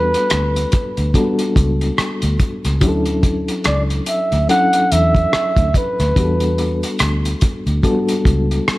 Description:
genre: lush 1970s-style soul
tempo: 72 BPM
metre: 4/4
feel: swing 58% on 16ths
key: unclear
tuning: A4 = 438 Hz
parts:
  - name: breathy flugelhorn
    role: melody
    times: 0.0-7.0 s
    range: B4 to F#5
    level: -18 LUFS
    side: right 1 dB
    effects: none
  - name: mellow reed electric piano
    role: accompaniment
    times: 0.0-8.8 s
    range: F#3 to A4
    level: -20 LUFS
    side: left 1 dB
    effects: fast tremolo
  - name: vintage muted fingered electric bass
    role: bass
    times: 0.0-8.7 s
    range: C#2 to E2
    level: -18 LUFS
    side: equal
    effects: none
  - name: cloth-damped thuddy drum kit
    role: drums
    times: 0.1-8.8 s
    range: hi-hat, kick drum, rim click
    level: -18 LUFS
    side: equal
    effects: none
room: small room ambience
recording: none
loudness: -14 LUFS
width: side -18 dB against mid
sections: 0.0-8.8 A section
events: none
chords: 0.0 Em11 (rootless); 2.8 Dmaj9; 6.2 Em11

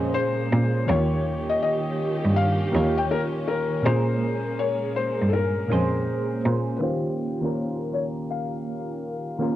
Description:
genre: lo-fi hip hop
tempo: 81 BPM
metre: 4/4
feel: swing 65% on 16ths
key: unclear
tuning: A4 = 440 Hz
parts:
  - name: felt-muted upright piano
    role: melody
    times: 0.0-9.4 s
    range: A4 to G5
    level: -28 LUFS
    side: left 5 dB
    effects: low-pass filter
  - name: soft electric-piano-like synth keys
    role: accompaniment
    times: 0.0-9.6 s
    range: Bb2 to Db5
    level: -26 LUFS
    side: right 1 dB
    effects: chorus, phaser, low-pass filter, cassette tape
  - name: warm studio string section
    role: sustained chords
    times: 0.0-6.8 s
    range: Db3 to G4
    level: -32 LUFS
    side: right 1 dB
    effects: low-pass filter, cassette tape
  - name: rich cello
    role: bass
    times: 0.0-6.7 s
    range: Eb2 to Bb2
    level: -24 LUFS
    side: right 1 dB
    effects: transformer saturation
room: light reverb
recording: home recording on cassette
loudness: -22 LUFS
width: side -13 dB against mid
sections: 0.0-6.8 A section; 6.8-9.6 B section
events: filter sweep 6.8-9.6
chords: 0.0 Bbm9; 0.9 Eb7; 3.9 Bbm9; 6.8 Eb7

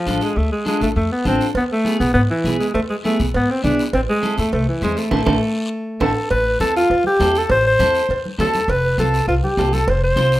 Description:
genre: latin, cumbia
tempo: 202 BPM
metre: 4/4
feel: straight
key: A harmonic minor, A minor from 6.3 s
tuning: A4 = 440 Hz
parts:
  - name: clear alto saxophone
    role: melody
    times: 0.0-10.4 s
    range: E3 to C5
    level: -18 LUFS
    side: equal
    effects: plate reverb
  - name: clean electric guitar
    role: accompaniment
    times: 0.1-10.4 s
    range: B3 to C5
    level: -25 LUFS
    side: right 1 dB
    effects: plate reverb
  - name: upright bass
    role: bass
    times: 0.1-10.4 s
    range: F1 to G#2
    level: -21 LUFS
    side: equal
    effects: none
  - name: congas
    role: percussion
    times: 0.1-10.3 s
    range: none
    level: -29 LUFS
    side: left 1 dB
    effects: none
  - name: guiro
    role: percussion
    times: 0.1-10.4 s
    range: none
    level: -34 LUFS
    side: left 3 dB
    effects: none
  - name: cowbell and timbales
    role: percussion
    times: 1.5-10.3 s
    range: none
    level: -26 LUFS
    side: right 4 dB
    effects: none
room: wet studio reverb, RT60 0.6 s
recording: rough home demo mix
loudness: -16 LUFS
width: side -15 dB against mid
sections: 0.0-6.3 A section; 6.3-10.4 B section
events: band accent 5.1-6.3; drum fill 5.6-6.3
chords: 0.0 Dm; 1.6 E; 3.9 Am; 8.7 F

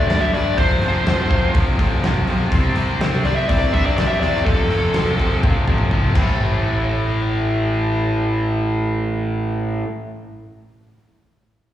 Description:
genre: hard rock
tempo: 124 BPM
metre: 4/4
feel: straight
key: A minor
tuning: A4 = 438 Hz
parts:
  - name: dark smooth lead guitar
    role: melody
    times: 0.0-5.4 s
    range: A4 to E5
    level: -21 LUFS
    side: left 1 dB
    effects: overdrive, slapback echo, plate reverb
  - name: distorted electric guitar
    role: riff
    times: 0.0-9.9 s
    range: F2 to C4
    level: -23 LUFS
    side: left 5 dB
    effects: overdrive, slapback echo
  - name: distorted electric guitar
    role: riff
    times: 0.0-9.9 s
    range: F2 to C4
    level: -26 LUFS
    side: right 9 dB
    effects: overdrive, slapback echo
  - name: fuzz picked electric bass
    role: bass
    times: 0.0-9.8 s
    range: F1 to G2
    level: -21 LUFS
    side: equal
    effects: overdrive
  - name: big rock drum kit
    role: drums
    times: 0.1-6.3 s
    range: crash cymbal, hi-hat, kick drum, snare drum, toms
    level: -21 LUFS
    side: equal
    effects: none
room: light reverb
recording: live gig heard through the venue's PA, recital hall reverb, small room ambience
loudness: -16 LUFS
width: side -12 dB against mid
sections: 0.0-6.4 A section; 6.4-10.3 B section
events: lead electric guitar solo 0.0-6.4; drum fill 5.4-6.4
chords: 0.0 G5; 0.6 F5; 2.5 C5; 4.5 F; 6.2 A5

